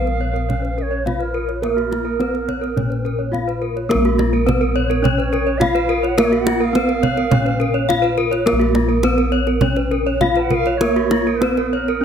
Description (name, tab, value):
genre	Balinese gamelan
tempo	105 BPM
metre	4/4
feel	straight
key	Bb pelog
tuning	A4 = 440 Hz
part	gamelan-type bronze metallophone	melody	0.0-12.0 s	Bb3 to F4	-21 LUFS	equal	none
part	bright reedy bansuri	second line	0.0-12.0 s	Bb4 to Bb5	-26 LUFS	right 6 dB	none
part	gamelan-type bronze metallophone	arpeggios	0.0-11.9 s	F4 to F5	-22 LUFS	left 7 dB	none
part	gamelan-type bronze metallophone	arpeggios	0.0-12.0 s	Gb4 to Db5	-25 LUFS	right 5 dB	none
part	gamelan-type bossed gongs	bass	0.0-12.0 s	Bb1 to Bb4	-22 LUFS	equal	none
part	kendang	percussion	0.1-12.0 s	none	-24 LUFS	right 2 dB	none
room	light reverb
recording	close, detailed microphones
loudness	-16 LUFS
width	side -8 dB against mid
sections	0.0-12.0 A section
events	none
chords	none